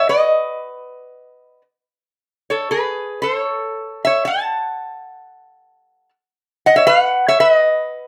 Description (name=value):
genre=hawaiian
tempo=115 BPM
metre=4/4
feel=swing 61% on 8ths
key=unclear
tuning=A4 = 443 Hz
part: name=lap resonator guitar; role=solo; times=0.0-8.1 s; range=G#4 to A5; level=-17 LUFS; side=equal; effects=none
room=moderate studio reverb, RT60 0.6 s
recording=none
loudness=-17 LUFS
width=mono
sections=0.0-8.1 A section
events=none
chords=0.1 N.C.; 2.2 Amaj7; 4.3 N.C.; 6.3 Bsus2; 7.4 N.C.